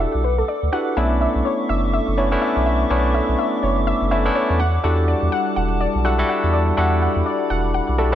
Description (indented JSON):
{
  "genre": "house",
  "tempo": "124 BPM",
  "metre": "4/4",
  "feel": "swing 59% on 16ths",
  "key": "unclear",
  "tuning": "A4 = 440 Hz",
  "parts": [
    { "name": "warbly tape-like pad", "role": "sustained chords", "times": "0.0-8.2 s", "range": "G3 to D6", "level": "-26 LUFS", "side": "equal", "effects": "chorus, built-in reverb, vintage 12-bit sampler grit" },
    { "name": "warbly dusty pluck", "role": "arpeggios", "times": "0.0-8.2 s", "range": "A4 to F#5", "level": "-25 LUFS", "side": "left 2 dB", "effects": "chorus, digital delay" },
    { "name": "barky tine electric piano", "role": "stabs", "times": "0.0-8.2 s", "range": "A3 to B4", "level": "-21 LUFS", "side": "left 1 dB", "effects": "tape echo" },
    { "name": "warm sub bass", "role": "bass", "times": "0.0-8.2 s", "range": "E1 to E2", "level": "-21 LUFS", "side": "equal", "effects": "none" }
  ],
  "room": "light reverb",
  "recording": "none",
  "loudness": "-17 LUFS",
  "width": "side -11 dB against mid",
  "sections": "0.0-8.2 A section",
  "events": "none",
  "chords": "0.0 Em11; 1.0 Bm11; 4.6 Em11"
}